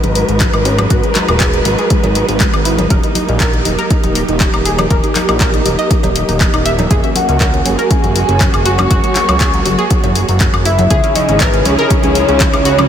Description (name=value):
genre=progressive house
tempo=120 BPM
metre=4/4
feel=straight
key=G# minor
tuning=A4 = 440 Hz
part: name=dark studio string section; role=sustained chords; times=0.0-12.9 s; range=C#3 to B4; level=-18 LUFS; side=right 2 dB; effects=sidechain pumping, low-pass filter
part: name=analog pluck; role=arpeggios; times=0.0-12.9 s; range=F#3 to E5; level=-19 LUFS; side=equal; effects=chorus, sidechain pumping, ping-pong delay
part: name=fat analog bass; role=bass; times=0.0-12.9 s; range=D#1 to C#2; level=-17 LUFS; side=equal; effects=sidechain pumping
part: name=house drum kit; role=drums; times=0.0-12.9 s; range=handclaps, hi-hat, woodblock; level=-18 LUFS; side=left 2 dB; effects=none
part: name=congas and cowbell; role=percussion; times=0.0-12.9 s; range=none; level=-24 LUFS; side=left 1 dB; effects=sidechain pumping on perc
part: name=electronic kick drum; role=drums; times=0.4-12.5 s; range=none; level=-15 LUFS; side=equal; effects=overdrive
part: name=soft octave-layered synth lead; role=melody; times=7.2-12.9 s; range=B4 to C#6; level=-17 LUFS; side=left 1 dB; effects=chorus, phaser, vintage 12-bit sampler grit, tape echo
room=moderate huge ambient reverb, RT60 4.6 s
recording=dreamy mix soaked in reverb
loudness=-10 LUFS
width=side -9 dB against mid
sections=0.0-12.9 A section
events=filter sweep on synth pluck 0.0-12.9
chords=0.0 G#m7; 2.9 D#; 6.9 F#add9; 10.9 C#madd9